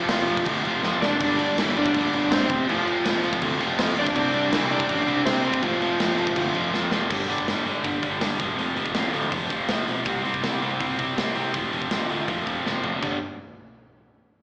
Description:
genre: punk rock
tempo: 163 BPM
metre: 4/4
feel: straight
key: unclear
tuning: A4 = 439 Hz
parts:
  - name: overdriven semi-hollow guitar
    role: melody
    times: 0.0-6.7 s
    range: E3 to D5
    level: -24 LUFS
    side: equal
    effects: none
  - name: distorted electric guitar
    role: riff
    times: 0.0-13.2 s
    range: F2 to C4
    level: -24 LUFS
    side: equal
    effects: distortion, slapback echo
  - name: growling picked electric bass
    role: bass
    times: 0.0-13.2 s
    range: E1 to C3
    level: -31 LUFS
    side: equal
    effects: overdrive
  - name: big rock drum kit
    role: drums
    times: 0.1-13.1 s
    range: crash cymbal, hi-hat, kick drum, snare drum, toms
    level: -28 LUFS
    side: equal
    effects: none
room: little or no reverb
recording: live gig heard through the venue's PA, club reverb, small speaker sound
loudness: -21 LUFS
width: side -26 dB against mid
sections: 0.0-7.1 A section; 7.1-13.0 B section; 13.0-14.4 C section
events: drum fill 0.8-1.2, 6.7-7.1, 12.7-13.0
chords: 0.0 F5; 1.2 G5; 2.5 F5; 4.2 C; 5.6 F5; 7.1 G5; 8.4 F5; 10.1 C5; 11.5 F5; 13.0 G5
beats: 0.10 0.47 0.84 | 1.21 1.58 1.95 2.31 | 2.68 3.05 3.42 3.79 | 4.16 4.52 4.89 5.26 | 5.63 5.99 6.36 6.73 | 7.10 7.47 7.84 8.21 | 8.58 8.95 9.31 9.69 | 10.05 10.43 10.80 11.17 | 11.54 11.91 12.28 12.65 | 13.02

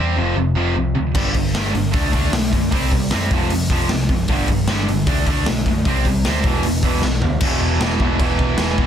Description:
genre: punk rock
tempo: 153 BPM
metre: 4/4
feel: straight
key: unclear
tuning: A4 = 439 Hz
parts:
  - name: distorted electric guitar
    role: riff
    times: 0.0-8.9 s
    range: E2 to D4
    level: -24 LUFS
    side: left 14 dB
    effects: distortion
  - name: overdriven electric guitar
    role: riff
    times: 0.0-8.9 s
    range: E2 to D4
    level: -22 LUFS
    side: right 10 dB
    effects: none
  - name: overdriven picked electric bass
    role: bass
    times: 0.0-8.9 s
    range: E1 to F#2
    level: -22 LUFS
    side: equal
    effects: none
  - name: raw garage drum kit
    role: drums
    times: 1.1-8.9 s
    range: crash cymbal, hi-hat, kick drum, snare drum, toms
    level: -19 LUFS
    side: equal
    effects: none
room: little or no reverb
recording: dense, heavily limited modern master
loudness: -16 LUFS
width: side -9 dB against mid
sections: 0.0-7.4 A section; 7.4-8.9 B section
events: drum fill 7.0-7.4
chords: 0.2 F5; 1.2 G5; 1.9 D; 2.7 C5; 3.3 F5; 4.3 G5; 5.1 D; 5.9 C5; 6.4 E5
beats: 0.37 0.76 | 1.16 1.55 1.94 2.33 | 2.72 3.12 3.51 3.90 | 4.29 4.68 5.07 5.47 | 5.86 6.25 6.64 7.03 | 7.42 7.82 8.21 8.60

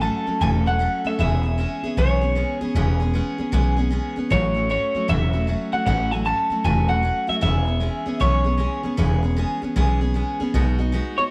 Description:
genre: rock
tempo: 154 BPM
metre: 4/4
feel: swing 64% on 8ths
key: E major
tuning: A4 = 440 Hz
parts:
  - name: electric guitar through a small old amp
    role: melody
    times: 0.0-8.8, 11.2 s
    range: C#5 to A5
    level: -26 LUFS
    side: equal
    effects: spring reverb, tape echo
  - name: picked steel-string acoustic guitar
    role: accompaniment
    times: 0.0-11.3 s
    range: A2 to A4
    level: -27 LUFS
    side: equal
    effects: none
  - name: upright bass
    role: bass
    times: 0.0-11.2 s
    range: E1 to B1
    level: -24 LUFS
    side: equal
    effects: none
room: light reverb, small room ambience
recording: none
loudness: -22 LUFS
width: mono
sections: 0.0-11.3 A section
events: none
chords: 0.0 A6; 1.2 E6; 4.3 A6; 7.4 E6; 10.5 B6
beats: 0.02 0.41 0.80 | 1.19 1.58 1.97 2.36 | 2.75 3.14 3.53 3.92 | 4.31 4.70 5.09 5.48 | 5.87 6.26 6.65 7.04 | 7.43 7.82 8.21 8.60 | 8.98 9.38 9.76 10.15 | 10.54 10.93

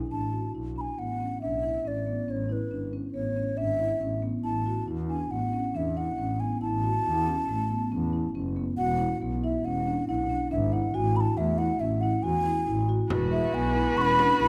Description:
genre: contemporary instrumental, chamber music in an uneven meter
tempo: 138 BPM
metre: 5/4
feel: straight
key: A major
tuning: A4 = 435 Hz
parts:
  - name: marimba with soft mallets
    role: arpeggios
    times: 0.0-14.5 s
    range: A3 to F#4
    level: -33 LUFS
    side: equal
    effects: none
  - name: dark double bass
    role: bass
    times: 0.0-14.5 s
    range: E1 to E2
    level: -33 LUFS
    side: equal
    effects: none
  - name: mellow hollow wooden flute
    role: melody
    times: 0.1-14.5 s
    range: B4 to C#6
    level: -32 LUFS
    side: equal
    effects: none
  - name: dark viola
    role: second line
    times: 13.1-14.5 s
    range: B4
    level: -30 LUFS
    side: equal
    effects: none
  - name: bright symphonic string section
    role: sustained chords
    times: 13.1-14.5 s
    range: D3 to F#4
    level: -38 LUFS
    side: equal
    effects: none
  - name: frame drum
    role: percussion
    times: 13.1-14.4 s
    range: none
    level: -37 LUFS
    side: equal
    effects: none
room: moderate recital hall reverb, RT60 1.5 s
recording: none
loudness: -28 LUFS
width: mono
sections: 0.1-8.8 A section; 8.8-14.5 B section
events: none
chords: 0.1 E7sus4/A; 2.3 C#m; 4.4 A5; 6.6 A; 8.8 E9; 10.9 Amaj7(no3); 13.1 E9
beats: | 0.12 0.55 0.98 1.41 1.85 | 2.28 2.71 3.15 3.58 4.01 | 4.45 4.88 5.32 5.75 6.18 | 6.62 7.05 7.48 7.92 8.35 | 8.78 9.21 9.65 10.08 10.51 | 10.95 11.38 11.81 12.24 12.68 | 13.11 13.54 13.97 14.41

